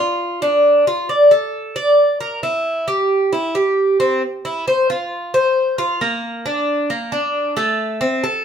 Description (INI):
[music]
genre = latin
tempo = 134 BPM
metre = 4/4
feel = straight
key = F major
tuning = A4 = 439 Hz
[part]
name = Cuban tres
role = solo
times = 0.0-8.4 s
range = A3 to D5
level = -15 LUFS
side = equal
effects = none
[sound]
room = moderate studio reverb, RT60 0.7 s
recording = band playing live in one room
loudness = -15 LUFS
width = side -8 dB against mid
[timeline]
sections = 0.0-4.2 A section; 4.2-8.4 A section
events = none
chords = none